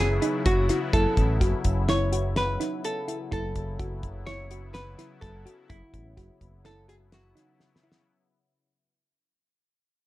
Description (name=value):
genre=progressive instrumental, band music in an uneven meter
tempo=126 BPM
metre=5/4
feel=straight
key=F# dorian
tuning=A4 = 440 Hz
part: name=archtop guitar, miked and amplified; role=melody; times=0.0-7.8 s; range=E4 to C#5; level=-29 LUFS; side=equal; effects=ping-pong delay
part: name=sweeping resonant pad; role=accompaniment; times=0.0-8.0 s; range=C#3 to E4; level=-35 LUFS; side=left 4 dB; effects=chorus
part: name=thumb-piano-like synth pluck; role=arpeggios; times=0.0-8.0 s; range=D#4 to F#4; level=-33 LUFS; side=right 2 dB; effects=chorus
part: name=picked electric bass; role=bass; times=0.0-7.3 s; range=F#1 to A1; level=-28 LUFS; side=equal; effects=none
part: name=cloth-damped thuddy drum kit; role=drums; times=0.2-8.0 s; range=hi-hat, kick drum, snare drum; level=-28 LUFS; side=equal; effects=none
room=light reverb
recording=dark, warm production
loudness=-23 LUFS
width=side -16 dB against mid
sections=0.0-8.1 A section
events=fade-out 0.0-8.1; drum fill 7.6-8.1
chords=0.0 F#m7; 3.3 A/F#; 5.7 F#7(no3)